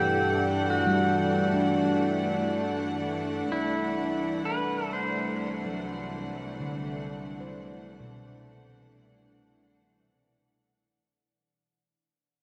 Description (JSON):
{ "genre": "ambient", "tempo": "64 BPM", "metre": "4/4", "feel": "straight", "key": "unclear", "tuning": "A4 = 435 Hz", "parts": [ { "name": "pedal steel guitar", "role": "melody", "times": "0.0-10.0 s", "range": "E4 to C5", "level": "-32 LUFS", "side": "equal", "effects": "shimmer reverb, delay" }, { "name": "dark studio string section", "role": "sustained chords", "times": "0.0-11.0 s", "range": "C2 to F#5", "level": "-32 LUFS", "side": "equal", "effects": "shimmer reverb" }, { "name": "handpan", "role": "arpeggios", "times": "0.0-11.3 s", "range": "B2 to C5", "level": "-35 LUFS", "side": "equal", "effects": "delay" }, { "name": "bowed-like drone", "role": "drone", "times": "0.0-11.1 s", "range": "E3 to E4", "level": "-43 LUFS", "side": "equal", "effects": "none" } ], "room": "wet huge ambient reverb, RT60 8.2 s", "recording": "none", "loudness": "-28 LUFS", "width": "mono", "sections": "0.0-11.0 A section", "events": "fade-out 1.0-11.0", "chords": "0.0 Gmaj7; 3.5 Cmaj7" }